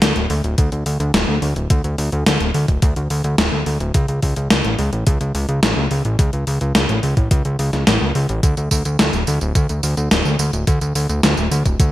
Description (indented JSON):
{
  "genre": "synthwave",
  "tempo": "107 BPM",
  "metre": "4/4",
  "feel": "straight",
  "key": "unclear",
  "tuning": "A4 = 440 Hz",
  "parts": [
    { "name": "fat analog bass", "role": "bass", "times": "0.0-11.9 s", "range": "D1 to D2", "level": "-19 LUFS", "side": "equal", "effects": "none" },
    { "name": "gated 80s digital drum machine", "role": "drums", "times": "0.0-11.9 s", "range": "hi-hat, snare drum, tambourine", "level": "-19 LUFS", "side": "equal", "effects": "gated reverb, gated reverb snare, overdrive" },
    { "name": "electronic kick drum", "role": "drums", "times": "0.6-11.9 s", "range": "none", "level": "-16 LUFS", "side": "equal", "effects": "overdrive" }
  ],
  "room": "light reverb",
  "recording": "bright 1980s-style digital production",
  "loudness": "-15 LUFS",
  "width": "side -15 dB against mid",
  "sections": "0.0-11.9 A section",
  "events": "none",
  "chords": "none",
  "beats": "0.02 0.58 1.14 | 1.70 2.26 2.82 3.38 | 3.95 4.51 5.07 5.63 | 6.19 6.75 7.31 7.87 | 8.43 8.99 9.55 10.11 | 10.68 11.23 11.80"
}